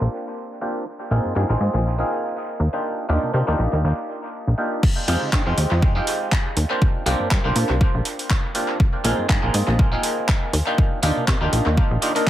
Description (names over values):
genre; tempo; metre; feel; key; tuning
filtered disco house; 121 BPM; 4/4; swing 55% on 16ths; F dorian; A4 = 440 Hz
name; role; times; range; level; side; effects
overdriven clav; accompaniment; 0.0-12.3 s; Ab3 to Bb4; -24 LUFS; equal; phaser, vintage 12-bit sampler grit, sidechain pumping, low-pass filter, dub echo
plucky analog bass; bass; 0.0-12.0 s; Bb1 to D3; -21 LUFS; equal; sidechain pumping, low-pass filter
electronic kick drum; drums; 4.8-12.3 s; none; -19 LUFS; equal; none
house drum kit; drums; 4.8-12.3 s; crash cymbal, handclaps, hi-hat; -27 LUFS; equal; sidechain pumping on cymbals, sidechain pumping on hats, dub echo
room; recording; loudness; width
light reverb; echo-heavy mix; -18 LUFS; side -12 dB against mid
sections
0.0-4.8 A section; 4.8-12.3 B section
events
drop 4.8-12.3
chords
0.0 C9sus4; 0.9 Bb9sus4; 2.6 Ebmaj9; 4.8 Fm9; 6.8 C9sus4; 8.8 Bb9sus4; 10.5 Ebmaj9